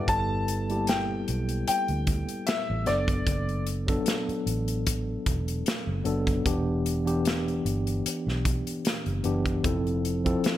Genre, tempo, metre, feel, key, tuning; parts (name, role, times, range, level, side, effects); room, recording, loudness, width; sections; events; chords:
lush 1970s-style soul; 75 BPM; 4/4; swing 54% on 16ths; G major; A4 = 441 Hz
clear baby grand piano; melody; 0.0-3.6 s; D5 to A5; -30 LUFS; left 2 dB; slapback echo
mellow tine electric piano; accompaniment; 0.0-10.6 s; E3 to A5; -29 LUFS; left 1 dB; auto-pan
vintage muted fingered electric bass; bass; 0.0-10.4 s; E1 to D2; -30 LUFS; equal
modern studio drum kit; drums; 0.1-10.6 s; hi-hat, kick drum, snare drum; -30 LUFS; equal
light reverb, small room ambience; -25 LUFS; side -13 dB against mid
0.1-10.6 A section
0.1 G69; 2.9 Bm7/F#; 6.5 Em7; 9.6 Fmaj7